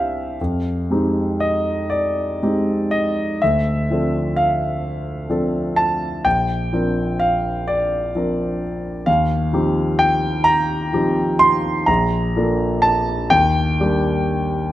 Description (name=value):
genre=classical, impressionist solo piano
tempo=39-44 BPM (dotted quarters)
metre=6/8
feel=rubato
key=unclear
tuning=A4 = 439 Hz
part: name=warm grand piano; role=solo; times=0.0-14.7 s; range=Bb1 to C6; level=-17 LUFS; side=equal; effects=none
room=light reverb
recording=close, detailed microphones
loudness=-17 LUFS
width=side -14 dB against mid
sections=0.0-14.7 A section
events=none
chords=0.4 Fm9; 3.4 Dm7; 6.3 Bb69; 9.1 Eb69; 11.9 Bbmaj7; 13.3 Ebmaj7